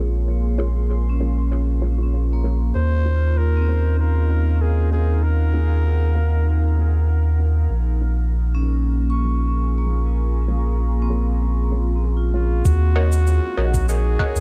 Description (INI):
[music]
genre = ambient dub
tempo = 97 BPM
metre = 4/4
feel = straight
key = Bb minor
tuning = A4 = 440 Hz
[part]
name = deep dark ambient pad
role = sustained chords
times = 0.0-14.4 s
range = Bb3 to C6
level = -34 LUFS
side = equal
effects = chorus, built-in reverb
[part]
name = vibraphone with medium mallets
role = arpeggios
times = 0.0-14.4 s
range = Bb3 to Db6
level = -34 LUFS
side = equal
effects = low-pass filter, dub echo
[part]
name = filtered dub chord stab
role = stabs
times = 0.0-14.4 s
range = F4 to Gb5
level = -35 LUFS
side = equal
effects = phaser, dub echo
[part]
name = warm sub bass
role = bass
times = 0.0-14.4 s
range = Bb1 to Eb2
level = -20 LUFS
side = equal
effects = none
[part]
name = trumpet with bucket mute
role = melody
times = 2.8-7.1, 12.3-14.4 s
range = F4 to C5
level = -32 LUFS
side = equal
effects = dub echo
[part]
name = electronic kick drum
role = drums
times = 12.7-14.3 s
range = none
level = -23 LUFS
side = equal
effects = none
[part]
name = shaker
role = drums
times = 12.7-14.4 s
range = none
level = -38 LUFS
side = equal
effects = overdrive
[sound]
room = little or no reverb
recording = none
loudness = -20 LUFS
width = mono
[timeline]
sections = 0.0-12.7 A section; 12.7-14.4 B section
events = none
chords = 0.0 Bbm7; 2.8 Ebm7; 7.7 Bbm7; 12.7 Ebm7